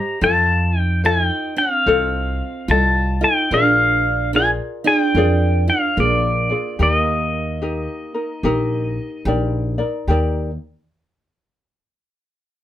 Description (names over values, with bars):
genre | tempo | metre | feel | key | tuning
Hawaiian | 73 BPM | 4/4 | swing 63% on 8ths | Eb major | A4 = 441 Hz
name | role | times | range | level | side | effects
pedal steel guitar | melody | 0.0-9.2 s | D5 to Bb5 | -18 LUFS | left 1 dB | none
picked acoustic archtop guitar | second line | 0.0-9.2 s | Bb3 to G4 | -25 LUFS | right 6 dB | none
ukulele | accompaniment | 0.0-10.5 s | Eb4 to Eb5 | -23 LUFS | left 3 dB | none
upright bass | bass | 0.2-10.6 s | Bb1 to F2 | -20 LUFS | equal | none
room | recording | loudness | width
light reverb | band playing live in one room | -16 LUFS | side -12 dB against mid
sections
0.0-10.1 A section; 10.1-12.6 B section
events
none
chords
0.2 F7; 3.5 Bb7; 6.8 Ebmaj7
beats
| 0.22 1.04 1.86 2.69 | 3.51 4.33 5.15 5.97 | 6.79 7.62 8.44 9.26 | 10.08